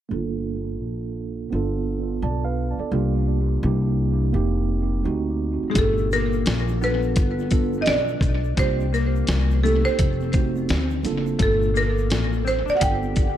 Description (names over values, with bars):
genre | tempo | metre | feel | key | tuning
hip hop, jazz-hop | 85 BPM | 4/4 | swing 62% on 16ths | G minor | A4 = 440 Hz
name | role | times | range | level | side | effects
mellow tine electric piano | accompaniment | 0.1-13.3 s | Bb2 to A5 | -27 LUFS | right 6 dB | fast stereo tremolo, low-pass filter, tape echo
upright bass | bass | 0.1-13.4 s | F1 to D2 | -24 LUFS | left 1 dB | none
buzzing marimba with medium hard mallets | melody | 5.7-13.4 s | Ab4 to G5 | -25 LUFS | right 2 dB | tape echo
mellow electric guitar | second line | 5.7-13.4 s | Ab3 to G4 | -29 LUFS | left 12 dB | analog chorus, tape echo
dusty soul sampler-style drum kit | drums | 5.8-13.4 s | hi-hat, kick drum, shaker, snare drum | -24 LUFS | equal | tape echo
egg shaker and congas | percussion | 5.8-13.4 s | none | -38 LUFS | right 12 dB | none
room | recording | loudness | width
digital ambience | echo-heavy mix | -20 LUFS | side -11 dB against mid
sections
0.1-5.8 A section; 5.8-13.4 B section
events
filter sweep on tine electric piano 0.1-5.8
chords
0.1 Gm9; 1.5 G9; 2.9 C7sus4; 3.6 C7; 4.3 F7sus4; 5.0 D7b9; 5.8 Gm9; 7.2 G9; 8.6 C7sus4; 9.3 C5; 10.0 F5; 10.7 D7; 11.4 Gm9; 12.8 G9